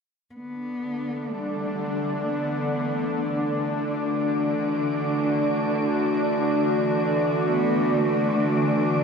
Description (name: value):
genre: ambient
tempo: free time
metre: none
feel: none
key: unclear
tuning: A4 = 440 Hz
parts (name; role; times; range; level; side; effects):
- dark cello; melody; 0.3-8.9 s; G3 to B3; -30 LUFS; left 1 dB; tape echo
- bowed-like drone; drone; 0.9-9.0 s; D3 to D4; -25 LUFS; left 1 dB; built-in reverb
- evolving wavetable pad; sustained chords; 1.0-9.0 s; D3 to F#4; -26 LUFS; right 2 dB; chorus, built-in reverb
- wind-like tuned noise texture; texture; 0.8-9.0 s; D5 to D6; -34 LUFS; left 2 dB; built-in reverb
room: wet cathedral reverb, RT60 5.1 s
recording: none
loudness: -22 LUFS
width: side -5 dB against mid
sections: 0.3-9.0 A section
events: fade-in on ambient pad 0.3-9.0; fade-in on synth texture 0.3-9.0; fade-in on cello 0.3-9.0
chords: 0.3 D